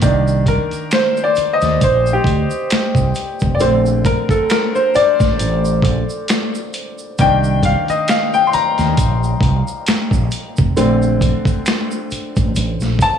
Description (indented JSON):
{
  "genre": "R&B, neo-soul",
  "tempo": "67 BPM",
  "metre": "4/4",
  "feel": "swing 55% on 16ths",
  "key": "unclear",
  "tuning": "A4 = 440 Hz",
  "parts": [
    { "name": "bright baby grand piano", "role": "accompaniment", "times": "0.0-13.2 s", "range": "D3 to C6", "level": "-17 LUFS", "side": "left 1 dB", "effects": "none" },
    { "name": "fretless electric bass", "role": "bass", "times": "0.0-13.0 s", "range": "F1 to Eb2", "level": "-17 LUFS", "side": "equal", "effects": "none" },
    { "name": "boom bap sampler-style drum kit", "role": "drums", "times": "0.0-13.2 s", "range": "finger snaps, hi-hat, kick drum, snare drum", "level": "-19 LUFS", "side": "equal", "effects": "none" },
    { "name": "tube shaker and finger snaps", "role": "percussion", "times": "0.0-13.2 s", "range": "none", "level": "-32 LUFS", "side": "right 6 dB", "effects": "none" }
  ],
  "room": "light reverb, studio reverb",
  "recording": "studio ambience",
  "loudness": "-13 LUFS",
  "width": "side -8 dB against mid",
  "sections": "0.0-13.2 A section",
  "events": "grand piano solo 0.0-13.2",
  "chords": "0.0 Cm9; 3.6 Bbmaj9; 7.2 Cm9; 10.8 Bbmaj9"
}